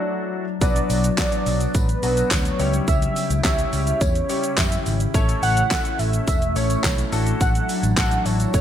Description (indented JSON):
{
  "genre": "dance-pop",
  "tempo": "106 BPM",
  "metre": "4/4",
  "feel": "straight",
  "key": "unclear",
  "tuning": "A4 = 440 Hz",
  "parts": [
    { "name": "warm velvety synth lead", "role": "melody", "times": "0.0-8.6 s", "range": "B4 to F#5", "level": "-25 LUFS", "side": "right 2 dB", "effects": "chorus, digital delay" },
    { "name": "warm concert grand piano", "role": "accompaniment", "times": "0.0-8.6 s", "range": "F#3 to E5", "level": "-29 LUFS", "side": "left 4 dB", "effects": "analog chorus, sidechain pumping" },
    { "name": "glassy FM pad", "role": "sustained chords", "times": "0.0-8.6 s", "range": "C#3 to G4", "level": "-28 LUFS", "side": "left 2 dB", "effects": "ensemble chorus, built-in reverb, sidechain pumping" },
    { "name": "vintage muted fingered electric bass", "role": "bass", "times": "0.6-8.6 s", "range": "E1 to F#2", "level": "-23 LUFS", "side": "equal", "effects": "sidechain pumping" },
    { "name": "pop drum kit", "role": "drums", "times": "0.6-8.6 s", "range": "handclaps, hi-hat, kick drum, shaker, snare drum", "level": "-22 LUFS", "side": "equal", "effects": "gated reverb" },
    { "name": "tambourine", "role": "percussion", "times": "0.6-8.6 s", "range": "none", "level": "-40 LUFS", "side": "left 10 dB", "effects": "none" }
  ],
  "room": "light reverb",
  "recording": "bright 1980s-style digital production",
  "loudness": "-18 LUFS",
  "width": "side -10 dB against mid",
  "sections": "0.0-8.6 A section",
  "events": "break 0.0-0.6",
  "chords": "0.0 Dadd9; 0.6 Bm; 2.6 C#dim; 5.1 A; 7.1 Dadd9/A"
}